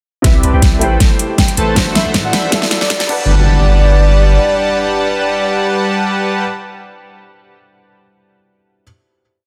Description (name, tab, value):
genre	future bass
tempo	158 BPM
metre	4/4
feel	half-time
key	G major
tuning	A4 = 439 Hz
part	soft octave-layered synth lead	melody	0.2-6.4 s	D5 to G5	-22 LUFS	equal	chorus, phaser, sidechain pumping, delay
part	felt-muted upright piano	accompaniment	0.2-8.8 s	B2 to F#5	-26 LUFS	equal	sidechain pumping, tape echo
part	Celtic harp	arpeggios	0.2-5.5 s	E4 to F#5	-29 LUFS	equal	none
part	soft supersaw	riff	0.2-6.4 s	G3 to B5	-20 LUFS	equal	sidechain pumping, low-pass filter, tape echo
part	long sustained 808-style bass	bass	0.2-4.4 s	G1 to A2	-15 LUFS	equal	sidechain pumping
part	dubstep drum kit	drums	0.2-3.2 s	crash cymbal, hi-hat, snare drum	-18 LUFS	equal	small room ambience
part	electronic kick drum	drums	0.2-3.2 s	none	-16 LUFS	equal	small room ambience
part	riser and impact	sound effects	1.3-6.5 s	none	-27 LUFS	equal	none
room	light reverb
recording	dense, heavily limited modern master, high-pass filter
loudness	-13 LUFS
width	mono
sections	0.2-3.3 build; 3.3-6.3 final hit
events	build-up 0.2-3.3; drum fill 0.2-3.3; filter sweep on supersaw synth 0.2-3.3; filter sweep 0.2-3.3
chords	0.2 Cmaj7; 0.8 Am7; 1.8 D7/A; 2.5 G6/B; 3.1 Gmaj7